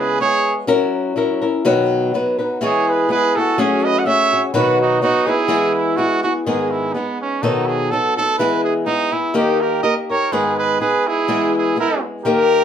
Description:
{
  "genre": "mexican folk, mariachi",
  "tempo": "124 BPM",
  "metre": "2/4",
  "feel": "swing 54% on 8ths",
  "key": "E major, G# harmonic minor from 6.5 s",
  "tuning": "A4 = 440 Hz",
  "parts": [
    { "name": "clear trumpet", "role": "melody", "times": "0.0-0.6, 2.6-12.6 s", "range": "B3 to F#5", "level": "-19 LUFS", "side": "right 4 dB", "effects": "none" },
    { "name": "clear trumpet", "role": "second line", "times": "0.0-0.6, 2.7-6.3, 9.4-12.6 s", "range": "C#4 to D#5", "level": "-22 LUFS", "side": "right 3 dB", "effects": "none" },
    { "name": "flamenco guitar", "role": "accompaniment", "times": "0.0-12.6 s", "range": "G#2 to B4", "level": "-18 LUFS", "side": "left 2 dB", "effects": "none" }
  ],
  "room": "wet studio ambience, RT60 0.5 s",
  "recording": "band playing live in one room",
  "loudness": "-15 LUFS",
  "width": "side -8 dB against mid",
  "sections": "0.0-6.5 A section; 6.5-12.6 B section",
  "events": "none",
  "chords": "0.0 C#m7; 0.7 F#7; 1.6 B; 2.6 E; 3.6 F#madd9; 4.5 B; 5.5 E; 6.5 G#m; 7.4 B7; 8.4 E; 9.4 D#; 10.3 G#m; 11.3 E"
}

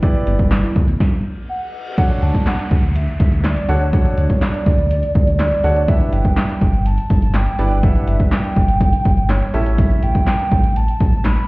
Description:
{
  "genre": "dance-pop",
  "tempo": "123 BPM",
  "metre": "4/4",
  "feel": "straight",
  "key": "D major",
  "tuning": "A4 = 440 Hz",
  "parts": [
    { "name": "clear baby grand piano", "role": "accompaniment", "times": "0.0-10.3 s", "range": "B3 to F#5", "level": "-24 LUFS", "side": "right 1 dB", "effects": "sidechain pumping" },
    { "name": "thumb-piano-like synth pluck", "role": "arpeggios", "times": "0.0-1.0 s", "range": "E3 to E4", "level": "-28 LUFS", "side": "equal", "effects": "chorus, sidechain pumping, digital delay" },
    { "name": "punchy analog drum machine", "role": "drums", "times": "0.0-11.5 s", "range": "crash cymbal, handclaps, hi-hat, kick drum, snare drum", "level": "-16 LUFS", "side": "equal", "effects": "none" },
    { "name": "sub bass with octave", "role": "bass", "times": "0.3-11.4 s", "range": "G1 to D2", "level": "-18 LUFS", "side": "equal", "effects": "sidechain pumping" },
    { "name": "reverse cymbal and downlifter", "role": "sound effects", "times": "1.2-5.9 s", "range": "none", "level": "-37 LUFS", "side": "left 1 dB", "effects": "none" },
    { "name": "hollow clarinet-like synth lead", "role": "melody", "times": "1.5-11.5 s", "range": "C#5 to B5", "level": "-23 LUFS", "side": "right 1 dB", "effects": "chorus, phaser, digital delay" }
  ],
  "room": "light reverb, digital ambience",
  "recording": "heard muffled through a wall, stone room reverb, EQ",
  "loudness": "-14 LUFS",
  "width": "side -23 dB against mid",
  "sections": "0.0-2.0 A section; 2.0-11.5 B section",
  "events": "stop 1.0-2.0; reverse cymbal 1.2-2.0",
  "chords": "0.0 G6; 1.7 N.C.; 2.0 Dmaj7; 5.9 G6; 9.5 A7"
}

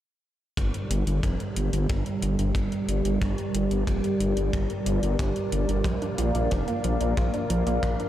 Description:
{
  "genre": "synthwave",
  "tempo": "91 BPM",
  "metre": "4/4",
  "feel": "straight",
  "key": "G minor",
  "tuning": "A4 = 440 Hz",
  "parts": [
    { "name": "lush unison pad", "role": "sustained chords", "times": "0.6-8.1 s", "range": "G3 to F5", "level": "-28 LUFS", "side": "right 1 dB", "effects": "chorus, phaser, sidechain pumping" },
    { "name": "wide detuned saw bass", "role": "bass", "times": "0.6-8.0 s", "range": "F1 to Bb1", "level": "-26 LUFS", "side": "equal", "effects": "chorus, sidechain pumping" },
    { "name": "electronic hi-hat", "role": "drums", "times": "0.6-8.1 s", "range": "none", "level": "-38 LUFS", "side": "left 1 dB", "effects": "none" },
    { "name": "kick drum", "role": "drums", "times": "0.6-8.0 s", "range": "none", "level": "-31 LUFS", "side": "equal", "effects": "none" },
    { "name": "wide unison pluck", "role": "arpeggios", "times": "5.9-8.1 s", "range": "F3 to F4", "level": "-31 LUFS", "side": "right 2 dB", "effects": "diffuse ambient delay" }
  ],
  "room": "moderate huge ambient reverb, RT60 8.3 s",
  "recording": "dreamy mix soaked in reverb",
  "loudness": "-24 LUFS",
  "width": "side -12 dB against mid",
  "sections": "0.6-8.1 A section",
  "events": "filter sweep on detuned saw bass 0.6-8.1; filter sweep on analog synth pad 0.6-8.1",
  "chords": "0.6 Gm; 5.9 Bb"
}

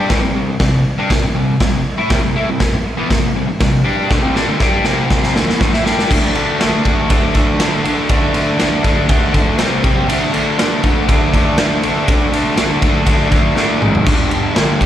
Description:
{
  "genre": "garage rock duo or trio",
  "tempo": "120 BPM",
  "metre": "4/4",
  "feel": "straight",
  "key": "unclear",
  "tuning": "A4 = 440 Hz",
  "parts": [
    { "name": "fuzz guitar", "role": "riff", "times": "0.0-14.9 s", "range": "G2 to G4", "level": "-15 LUFS", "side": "equal", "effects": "distortion" },
    { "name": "raw garage drum kit", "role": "drums", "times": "0.1-14.9 s", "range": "crash cymbal, hi-hat, kick drum, ride cymbal, snare drum, toms", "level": "-15 LUFS", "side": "equal", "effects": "none" }
  ],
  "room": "small room ambience",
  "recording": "live gig heard through the venue's PA, recital hall reverb, lossy compression artefacts",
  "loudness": "-12 LUFS",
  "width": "side -11 dB against mid",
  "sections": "0.0-6.1 A section; 6.1-14.1 B section",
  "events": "drum fill 4.1-6.1, 13.6-14.1",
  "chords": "0.0 C5; 6.1 D5; 9.6 C5; 10.1 D5; 13.8 G#5; 14.1 G5"
}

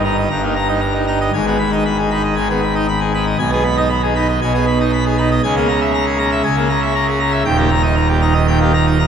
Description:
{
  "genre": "classical, organ toccata",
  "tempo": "117 BPM",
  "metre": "4/4",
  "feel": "straight",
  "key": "G# minor",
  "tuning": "A4 = 440 Hz",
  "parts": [
    { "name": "pipe organ, full organ", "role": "solo", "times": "0.0-9.1 s", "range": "D#1 to B5", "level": "-14 LUFS", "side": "right 1 dB", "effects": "none" }
  ],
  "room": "wet church reverb, RT60 3.6 s",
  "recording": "none",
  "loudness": "-14 LUFS",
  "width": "side -7 dB against mid",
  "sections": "0.0-9.1 A section",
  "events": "none",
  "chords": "0.0 D#/G; 1.3 G#m; 3.4 G#m/B; 5.4 A#m7b5/C#; 7.5 D#"
}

